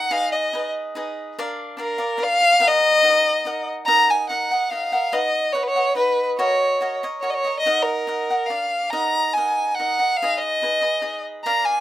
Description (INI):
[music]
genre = mexican folk, mariachi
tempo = 143 BPM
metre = 3/4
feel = straight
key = Eb minor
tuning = A4 = 440 Hz
[part]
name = rich violin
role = melody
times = 0.0-11.8 s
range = Bb4 to Bb5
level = -18 LUFS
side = equal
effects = none
[part]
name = cavaquinho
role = accompaniment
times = 0.0-11.8 s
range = D4 to Gb5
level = -26 LUFS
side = equal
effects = none
[sound]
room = moderate small room reverb, RT60 0.5 s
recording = rough home demo mix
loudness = -18 LUFS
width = side -13 dB against mid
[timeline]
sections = 0.0-3.9 A section; 3.9-11.8 A section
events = none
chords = 0.1 Abm; 1.4 Bb; 2.6 Ebm; 5.1 B; 6.4 Ebm7; 7.7 Ebm; 8.5 Bb; 8.9 Ebm; 10.2 Abm